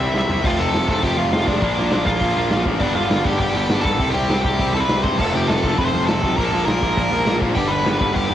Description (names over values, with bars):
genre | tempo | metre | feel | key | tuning
punk rock | 202 BPM | 4/4 | straight | unclear | A4 = 440 Hz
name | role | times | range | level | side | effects
smooth overdriven lead guitar | melody | 0.0-8.3 s | D4 to C6 | -22 LUFS | equal | none
crunchy overdriven guitar | riff | 0.0-8.3 s | F2 to E4 | -26 LUFS | right 10 dB | cassette tape
tight distorted guitar | riff | 0.0-8.3 s | F2 to C4 | -24 LUFS | left 8 dB | distortion, cassette tape
fuzz picked electric bass | bass | 0.0-8.3 s | F1 to G2 | -24 LUFS | equal | overdrive
raw garage drum kit | drums | 0.1-8.2 s | crash cymbal, hi-hat, kick drum, snare drum, toms | -23 LUFS | equal | cassette tape
thick fuzz guitar | riff | 5.2-8.3 s | F2 to Bb3 | -29 LUFS | right 1 dB | none
room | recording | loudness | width
little or no reverb | home recording on cassette | -16 LUFS | side -11 dB against mid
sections
0.4-8.3 A section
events
drum fill 0.1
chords
0.4 F; 1.6 Bb; 2.8 G; 4.0 C; 5.2 F; 6.4 Bb; 7.6 G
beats
0.14 | 0.44 0.73 1.03 1.33 | 1.62 1.92 2.22 2.51 | 2.81 3.11 3.40 3.70 | 4.00 4.29 4.59 4.89 | 5.19 5.48 5.78 6.08 | 6.37 6.67 6.97 7.27 | 7.56 7.86 8.16